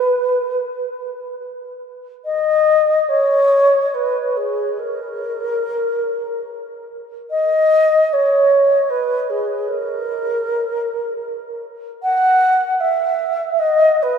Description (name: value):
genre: classical, free, expressive piece for unaccompanied alto flute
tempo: free time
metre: none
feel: none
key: unclear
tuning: A4 = 440 Hz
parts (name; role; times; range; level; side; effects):
- mellow wooden-headed alto flute; solo; 0.0-14.2 s; G#4 to F#5; -16 LUFS; equal; none
room: wet cathedral reverb, RT60 5.3 s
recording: in a vast, echoing space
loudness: -15 LUFS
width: side -7 dB against mid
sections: 0.0-2.2 A section; 2.2-14.2 B section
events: none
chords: none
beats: free time